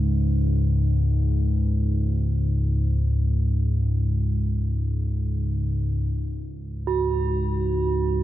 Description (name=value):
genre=world meditative, free-time meditation music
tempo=free time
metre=none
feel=none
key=unclear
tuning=A4 = 440 Hz
part: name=deep rumbling drone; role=drone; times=0.0-8.2 s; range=C#2 to G#2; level=-21 LUFS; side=equal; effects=built-in reverb
part: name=bronze singing bowl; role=texture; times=6.9-8.2 s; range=F#4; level=-24 LUFS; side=right 6 dB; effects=none
room=light reverb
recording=dark, warm production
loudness=-21 LUFS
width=side -14 dB against mid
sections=0.0-6.1 A section; 6.1-8.2 A section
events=none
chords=none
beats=free time